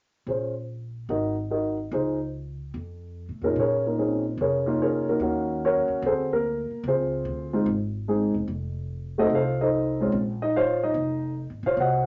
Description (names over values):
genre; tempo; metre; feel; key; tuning
jazz piano trio; 146 BPM; 4/4; swing 67% on 8ths; Bb minor; A4 = 440 Hz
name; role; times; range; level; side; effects
dark concert grand piano; melody; 0.3-12.1 s; Bb2 to Gb5; -26 LUFS; equal; none
upright bass; bass; 0.3-12.1 s; E1 to A2; -35 LUFS; equal; none
room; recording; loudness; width
wet studio ambience, RT60 0.5 s; nothing above 7.5 kHz; -26 LUFS; mono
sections
0.3-3.6 A section; 3.6-12.1 B section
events
none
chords
0.3 Bbm7; 1.1 Ab5; 1.9 Dbmaj7; 2.7 F; 3.6 Bbm11; 5.2 Ebm7; 6.0 D7#11; 6.8 Dbmaj9; 8.5 F7; 10.1 Bbmadd9